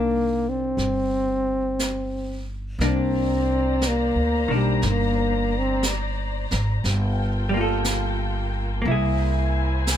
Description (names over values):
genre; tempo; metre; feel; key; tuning
jazz ballad; 59 BPM; 4/4; swing 69% on 8ths; C minor; A4 = 441 Hz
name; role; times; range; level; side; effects
warm trombone; melody; 0.0-5.9 s; G3 to C4; -23 LUFS; equal; none
vintage hollow-body jazz guitar; accompaniment; 0.0-10.0 s; Eb3 to A4; -29 LUFS; left 2 dB; none
upright bass; bass; 0.0-10.0 s; G1 to D2; -25 LUFS; equal; none
jazz brush drum kit; drums; 0.8-10.0 s; brushed snare drum, hi-hat, snare drum; -30 LUFS; right 2 dB; none
muted studio string section; sustained chords; 2.8-10.0 s; Bb3 to Bb5; -30 LUFS; left 4 dB; none
room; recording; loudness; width
little or no reverb; close, detailed microphones; -21 LUFS; side -10 dB against mid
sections
0.0-2.8 A section; 2.8-10.0 B section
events
break 1.8-2.8; trombone solo 2.8-10.0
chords
0.0 Cm9; 6.8 Gm9; 8.9 C7b13